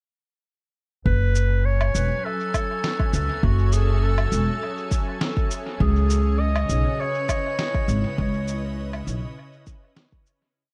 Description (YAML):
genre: ambient dub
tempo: 101 BPM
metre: 4/4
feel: straight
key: F# dorian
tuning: A4 = 440 Hz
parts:
  - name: clear clarinet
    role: melody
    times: 1.1-8.7 s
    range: F#4 to D#5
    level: -30 LUFS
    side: equal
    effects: dub echo
  - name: soft additive organ-like pad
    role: sustained chords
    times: 1.5-10.6 s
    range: C#3 to G#5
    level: -35 LUFS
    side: equal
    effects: ensemble chorus, built-in reverb
  - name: upright bass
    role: bass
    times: 1.1-9.2 s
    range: E1 to C#2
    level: -23 LUFS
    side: equal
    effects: none
  - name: electronic kick drum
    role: drums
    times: 1.1-10.2 s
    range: none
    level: -27 LUFS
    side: equal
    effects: none
  - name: electronic cabasa, woodblock and snare drum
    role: drums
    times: 1.4-10.4 s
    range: none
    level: -33 LUFS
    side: equal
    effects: dub echo
room: little or no reverb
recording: echo-heavy mix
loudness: -23 LUFS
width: mono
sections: 1.1-10.6 groove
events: fade-out 7.4-10.6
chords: 1.1 F#m7; 5.8 C#m7